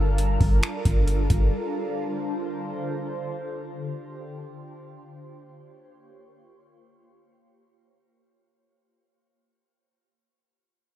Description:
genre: hip hop, atmospheric cloud-rap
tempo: free time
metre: none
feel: none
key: unclear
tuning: A4 = 437 Hz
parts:
  - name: shimmering ambient pad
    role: sustained chords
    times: 0.0-8.7 s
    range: D3 to Db5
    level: -31 LUFS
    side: equal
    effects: chorus, built-in reverb, phaser, sidechain pumping, low-pass filter
  - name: warm 808-style bass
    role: bass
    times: 0.0-1.5 s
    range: G1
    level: -22 LUFS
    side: equal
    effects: none
  - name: booming analog drum machine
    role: drums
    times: 0.2-1.5 s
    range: finger snaps, hi-hat, kick drum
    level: -24 LUFS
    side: equal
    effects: none
room: digital ambience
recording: none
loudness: -23 LUFS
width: side -13 dB against mid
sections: 0.0-8.7 A section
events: fade-out 0.0-8.7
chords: 0.0 Gm7; 1.5 Dm7; 5.1 Bbm6

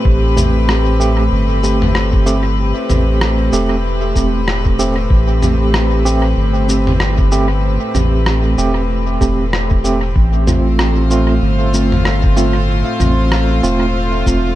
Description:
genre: ambient dub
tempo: 95 BPM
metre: 4/4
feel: swing 59% on 16ths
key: A minor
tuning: A4 = 442 Hz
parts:
  - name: rich studio string section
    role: sustained chords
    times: 0.0-14.6 s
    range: A2 to C5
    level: -20 LUFS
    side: left 1 dB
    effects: none
  - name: overdriven tine electric piano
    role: stabs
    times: 0.0-14.5 s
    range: A3 to G4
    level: -19 LUFS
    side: right 2 dB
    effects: fast tremolo, dub echo
  - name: soft dub sub bass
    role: bass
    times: 0.1-14.6 s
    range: E1 to A1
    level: -15 LUFS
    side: equal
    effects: none
  - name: electronic kick drum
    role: drums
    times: 0.1-14.4 s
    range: none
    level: -16 LUFS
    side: equal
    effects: none
  - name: lo-fi sampler-style drum kit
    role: drums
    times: 0.4-14.4 s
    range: cabasa, rim click, toms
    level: -21 LUFS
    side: equal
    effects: dub echo
room: little or no reverb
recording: none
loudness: -12 LUFS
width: side -14 dB against mid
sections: 0.1-14.6 A section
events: none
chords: 0.1 Am7; 10.2 F

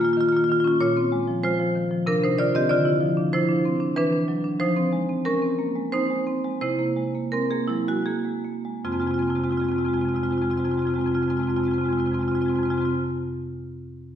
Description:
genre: classical, contemporary piece for solo marimba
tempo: 74-96 BPM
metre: 3/4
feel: straight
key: F minor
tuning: A4 = 440 Hz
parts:
  - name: marimba with medium hard mallets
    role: solo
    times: 0.0-12.9 s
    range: F2 to Eb5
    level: -21 LUFS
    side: equal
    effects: none
room: wet recital hall reverb, RT60 1.4 s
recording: recorded in a church or concert hall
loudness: -21 LUFS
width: side -9 dB against mid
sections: 0.0-8.8 A section; 8.8-13.6 B section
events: slowing down 3.7-8.8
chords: 0.0 Db69/Bb; 0.8 Bbm9; 2.1 Cmadd9; 2.7 Dm9; 4.0 Esus2; 4.6 Fm7; 6.6 Caug7; 8.8 Fm

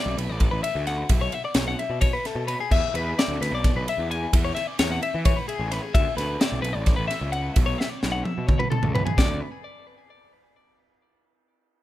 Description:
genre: math rock and midwest emo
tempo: 260 BPM (eighths)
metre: 7/8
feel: straight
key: unclear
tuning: A4 = 440 Hz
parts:
  - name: twelve-string electric guitar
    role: arpeggios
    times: 0.0-9.4 s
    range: G#4 to G#5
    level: -28 LUFS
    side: left 4 dB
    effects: digital delay
  - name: fuzz picked electric bass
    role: bass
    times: 0.1-9.4 s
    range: A1 to E3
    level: -29 LUFS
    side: equal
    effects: overdrive
  - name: crisp fusion drum kit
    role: drums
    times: 0.2-9.3 s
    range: china cymbal, crash cymbal, kick drum, ride cymbal, snare drum, toms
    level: -24 LUFS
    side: equal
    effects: none
room: little or no reverb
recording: rough home demo mix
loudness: -22 LUFS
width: side -14 dB against mid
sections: 0.0-9.2 A section; 9.2-10.8 B section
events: drum fill 7.8-9.2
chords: 0.0 D69; 1.1 B7sus2; 2.7 E7; 4.3 C#m7/E; 6.0 D69; 7.6 B7sus2; 9.2 N.C.

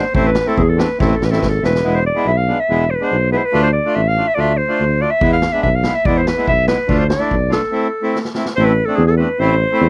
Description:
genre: klezmer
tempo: 143 BPM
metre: 2/4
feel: straight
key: A harmonic minor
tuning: A4 = 440 Hz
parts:
  - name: clear clarinet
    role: melody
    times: 0.0-9.9 s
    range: G#4 to F5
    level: -20 LUFS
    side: equal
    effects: none
  - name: accordion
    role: accompaniment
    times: 0.0-9.9 s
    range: G#3 to F4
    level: -22 LUFS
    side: equal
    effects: none
  - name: mellow tuba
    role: bass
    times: 0.1-9.9 s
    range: E1 to E2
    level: -20 LUFS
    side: equal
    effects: none
  - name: street-band drum kit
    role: drums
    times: 0.1-1.8, 5.2-8.6 s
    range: kick drum, snare drum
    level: -23 LUFS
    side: equal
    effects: none
room: light reverb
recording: dry, close 1970s-style studio recording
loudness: -16 LUFS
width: mono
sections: 0.0-1.8 A section; 1.8-8.6 B section; 8.6-9.9 A section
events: drum fill 1.0-1.8, 8.1-8.6; break 7.7-8.6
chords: 0.1 Am; 1.8 E; 3.5 Dm; 5.2 E; 6.9 Dm; 7.7 Am

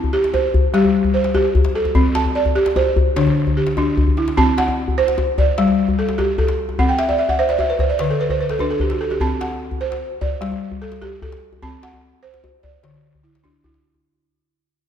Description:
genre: west african traditional, West African string and xylophone music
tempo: 99 BPM (dotted quarters)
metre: 12/8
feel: straight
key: C lydian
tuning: A4 = 439 Hz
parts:
  - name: balafon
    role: arpeggios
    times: 0.0-14.2 s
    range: D3 to A5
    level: -18 LUFS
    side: right 1 dB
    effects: none
  - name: djembe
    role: percussion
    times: 0.0-14.0 s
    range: none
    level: -20 LUFS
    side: left 2 dB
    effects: none
room: moderate concert hall reverb, RT60 2.4 s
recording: none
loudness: -16 LUFS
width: side -9 dB against mid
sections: 0.0-4.4 A section; 4.4-14.0 B section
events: drum fill 4.1-4.4; fade-out 4.4-14.0; balafon fill 6.8-9.2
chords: 0.0 C5; 3.2 Dsus24; 4.4 C; 5.6 G5; 6.8 Cmaj9#11; 8.0 N.C.; 9.2 D7/C; 10.4 G5; 11.6 D7/C; 12.8 Dsus2

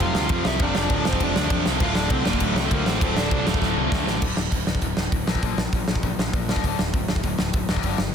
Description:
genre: punk rock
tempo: 199 BPM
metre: 4/4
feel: straight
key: D minor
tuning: A4 = 438 Hz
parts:
  - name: dark smooth lead guitar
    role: melody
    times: 0.0-3.5 s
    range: A3 to F5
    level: -28 LUFS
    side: equal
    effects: overdrive
  - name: high-gain distorted guitar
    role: riff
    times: 0.0-4.2 s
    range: D2 to F3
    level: -29 LUFS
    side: equal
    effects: distortion
  - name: overdriven electric guitar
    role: riff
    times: 0.0-4.2 s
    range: D2 to F4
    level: -28 LUFS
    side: right 15 dB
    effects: none
  - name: tight distorted guitar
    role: riff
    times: 0.0-8.1 s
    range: D2 to Bb3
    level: -29 LUFS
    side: left 14 dB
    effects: distortion
  - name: fuzz picked electric bass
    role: bass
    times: 0.0-8.1 s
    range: D1 to F2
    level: -28 LUFS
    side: equal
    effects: overdrive
  - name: big rock drum kit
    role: drums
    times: 0.0-8.1 s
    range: crash cymbal, hi-hat, kick drum, snare drum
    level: -23 LUFS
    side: equal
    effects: none
room: little or no reverb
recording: dense, heavily limited modern master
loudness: -20 LUFS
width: side -7 dB against mid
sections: 0.0-4.2 A section; 4.2-8.1 B section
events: drum fill 3.6-4.2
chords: 0.0 Dm; 4.2 D5; 5.3 Bb5; 6.6 D5

